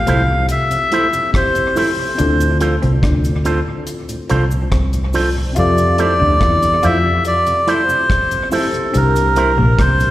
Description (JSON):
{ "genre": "lovers rock reggae", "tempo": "71 BPM", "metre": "4/4", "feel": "straight", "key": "F major", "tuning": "A4 = 441 Hz", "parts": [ { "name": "melodica", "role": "melody", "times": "0.0-10.1 s", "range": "A4 to F5", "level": "-16 LUFS", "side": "equal", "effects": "dub echo, slapback echo" }, { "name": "tine electric piano", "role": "accompaniment", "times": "0.0-10.1 s", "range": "C4 to E5", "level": "-24 LUFS", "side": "left 4 dB", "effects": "slapback echo" }, { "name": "vintage muted fingered electric bass", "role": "bass", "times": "0.0-10.1 s", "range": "Bb1 to F2", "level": "-16 LUFS", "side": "equal", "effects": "none" }, { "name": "mellow tonewheel organ", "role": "accompaniment", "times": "0.1-10.1 s", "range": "D2 to E4", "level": "-28 LUFS", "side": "right 1 dB", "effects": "slow rotary speaker, dub echo, slapback echo" }, { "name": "electric guitar through a small old amp", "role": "riff", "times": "0.1-10.0 s", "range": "Bb3 to F4", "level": "-26 LUFS", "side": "left 3 dB", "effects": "dub echo, slapback echo" }, { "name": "electric guitar with an envelope filter", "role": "stabs", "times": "0.1-9.5 s", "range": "E4 to C5", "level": "-20 LUFS", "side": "right 3 dB", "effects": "slapback echo" }, { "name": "deep reggae drum kit", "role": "drums", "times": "0.1-10.1 s", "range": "hi-hat, kick drum, rim click", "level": "-22 LUFS", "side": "equal", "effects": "dub echo" }, { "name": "cabasa", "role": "percussion", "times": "0.1-10.1 s", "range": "none", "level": "-38 LUFS", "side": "right 4 dB", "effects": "none" } ], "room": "light reverb", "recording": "live gig heard through the venue's PA, recital hall reverb", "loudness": "-13 LUFS", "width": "side -14 dB against mid", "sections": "0.0-10.1 A section", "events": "none", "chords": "0.0 Fmaj7; 2.2 Dm7; 5.6 Fmaj7; 8.9 C7" }